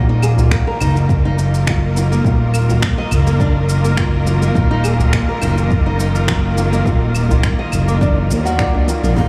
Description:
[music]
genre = organic downtempo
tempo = 104 BPM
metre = 4/4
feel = swing 54% on 16ths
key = Eb minor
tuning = A4 = 439 Hz
[part]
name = felt-muted upright piano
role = accompaniment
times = 0.0-9.3 s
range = F3 to Ab4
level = -27 LUFS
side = equal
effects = sidechain pumping, analog delay
[part]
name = bright studio string section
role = sustained chords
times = 0.0-9.3 s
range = B2 to Bb4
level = -26 LUFS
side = equal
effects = sidechain pumping
[part]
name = nylon-string guitar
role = arpeggios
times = 0.0-9.3 s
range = Bb3 to Eb5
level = -26 LUFS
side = equal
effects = vintage 12-bit sampler grit, analog delay
[part]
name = smooth gliding synth bass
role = bass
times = 0.0-9.3 s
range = Eb1 to Eb2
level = -18 LUFS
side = equal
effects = sidechain pumping
[part]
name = electronic claves, shaker and finger snaps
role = drums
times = 0.2-9.3 s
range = none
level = -29 LUFS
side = equal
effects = small room ambience
[part]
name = udu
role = percussion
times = 0.4-8.9 s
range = none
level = -22 LUFS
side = equal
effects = none
[part]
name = electronic kick drum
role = drums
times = 0.5-9.3 s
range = none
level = -20 LUFS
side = equal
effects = small room ambience
[part]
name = breathy mellow ney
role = melody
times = 9.2-9.3 s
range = F5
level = -38 LUFS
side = equal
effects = none
[sound]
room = moderate huge ambient reverb, RT60 8.3 s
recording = dreamy mix soaked in reverb, studio reverb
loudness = -15 LUFS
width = mono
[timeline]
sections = 0.0-9.3 A section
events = none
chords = 0.0 Ebmadd9

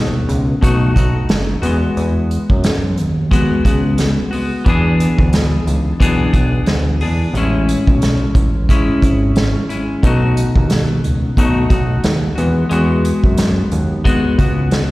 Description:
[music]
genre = indie pop, bedroom pop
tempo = 89 BPM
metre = 4/4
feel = swing 55% on 16ths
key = E major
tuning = A4 = 441 Hz
[part]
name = clean electric guitar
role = accompaniment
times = 0.0-14.9 s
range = A2 to G#4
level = -18 LUFS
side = left 2 dB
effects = wide subtle chorus, warbly pitch drift
[part]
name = fat analog bass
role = bass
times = 0.0-14.9 s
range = F#1 to F#2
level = -16 LUFS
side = equal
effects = none
[part]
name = unplugged drum kit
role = drums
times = 0.3-14.9 s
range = hi-hat, kick drum, snare drum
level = -17 LUFS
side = equal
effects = none
[sound]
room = small room ambience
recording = live gig heard through the venue's PA, recital hall reverb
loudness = -13 LUFS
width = side -19 dB against mid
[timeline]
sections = 0.0-14.9 A section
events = none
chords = 0.0 B7; 1.6 Eadd9; 4.7 E7; 7.3 Amaj7; 10.0 B7; 12.4 Eadd9

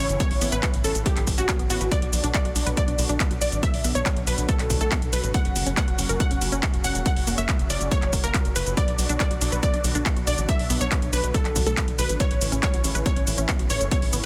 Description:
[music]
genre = uplifting trance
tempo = 140 BPM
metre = 4/4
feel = straight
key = B minor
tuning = A4 = 441 Hz
[part]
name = unison pluck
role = melody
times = 0.0-14.2 s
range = F#4 to F#5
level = -32 LUFS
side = equal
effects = sidechain pumping, tape echo
[part]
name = warm grand piano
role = second line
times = 0.0-14.2 s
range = F#4 to F#5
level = -38 LUFS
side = equal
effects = none
[part]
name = filtered supersaw swell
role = sustained chords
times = 0.0-14.3 s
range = A2 to F#4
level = -36 LUFS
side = equal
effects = phaser, sidechain pumping
[part]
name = unison pluck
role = arpeggios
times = 0.0-14.2 s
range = A3 to B4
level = -36 LUFS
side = equal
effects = sidechain pumping, tape echo
[part]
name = tight sequencer bass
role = bass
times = 0.0-14.2 s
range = E1 to B1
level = -30 LUFS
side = equal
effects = sidechain pumping
[part]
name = techno drum kit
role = drums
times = 0.1-14.2 s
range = handclaps, hi-hat, shaker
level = -30 LUFS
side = equal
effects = none
[part]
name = electronic kick drum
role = drums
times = 0.2-14.0 s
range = none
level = -27 LUFS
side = equal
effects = none
[sound]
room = digital ambience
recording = dense, heavily limited modern master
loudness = -23 LUFS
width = mono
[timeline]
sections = 0.0-14.3 A section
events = none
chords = 0.0 A; 1.9 Bm; 5.3 F#; 8.8 Bm; 12.2 A

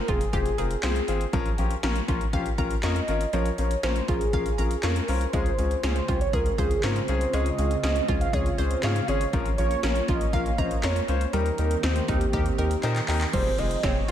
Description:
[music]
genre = synth-pop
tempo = 120 BPM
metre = 4/4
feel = straight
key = unclear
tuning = A4 = 439 Hz
[part]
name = warm velvety synth lead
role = melody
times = 0.0-14.1 s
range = G4 to F5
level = -30 LUFS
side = right 2 dB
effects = chorus, analog delay, shimmer reverb
[part]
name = warm grand piano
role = accompaniment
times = 0.1-14.1 s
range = C4 to C5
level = -31 LUFS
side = left 6 dB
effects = analog delay, shimmer reverb
[part]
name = analog pluck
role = arpeggios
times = 0.1-14.1 s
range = F3 to Db6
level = -36 LUFS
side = right 4 dB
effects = chorus, analog delay, shimmer reverb
[part]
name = rubbery square bass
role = bass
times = 0.1-14.1 s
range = F1 to Bb2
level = -27 LUFS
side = equal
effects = none
[part]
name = 80s electronic pad drums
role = drums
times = 0.1-14.1 s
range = crash cymbal, handclaps, hi-hat, kick drum, snare drum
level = -28 LUFS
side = equal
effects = analog delay
[part]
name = warm analog pad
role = sustained chords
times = 5.3-14.1 s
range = Db3 to Ab4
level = -34 LUFS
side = right 2 dB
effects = wide subtle chorus
[sound]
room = light reverb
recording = echo-heavy mix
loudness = -23 LUFS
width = side -10 dB against mid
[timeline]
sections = 0.0-13.3 A section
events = drum fill 12.8-13.3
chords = 0.0 Fmadd9; 1.3 Dbmaj7; 9.3 Bbm; 11.3 Eb6; 13.3 Fmadd9

